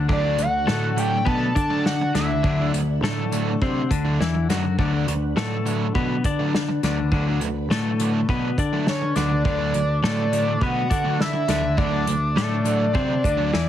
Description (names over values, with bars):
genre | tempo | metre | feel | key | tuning
indie rock | 103 BPM | 4/4 | straight | D major | A4 = 440 Hz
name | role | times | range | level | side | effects
ensemble organ-string | sustained chords | 0.0-13.7 s | D3 to F#5 | -34 LUFS | equal | phaser, ensemble chorus
twelve-string electric guitar | riff | 0.0-13.7 s | D3 to D4 | -25 LUFS | left 6 dB | none
picked electric bass | bass | 0.0-13.7 s | D2 to D3 | -26 LUFS | equal | none
overdriven synth lead | melody | 0.1-2.7, 8.9-13.7 s | C#5 to A5 | -25 LUFS | right 1 dB | distortion
sludgy distorted guitar | riff | 0.1-13.6 s | D3 to D4 | -28 LUFS | right 8 dB | overdrive, lush chorus
unplugged drum kit | drums | 0.1-13.7 s | hi-hat, kick drum, snare drum | -26 LUFS | equal | none
room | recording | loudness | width
light reverb | heavily compressed radio sound | -20 LUFS | side -11 dB against mid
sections
0.0-13.7 A section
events
none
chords
0.0 D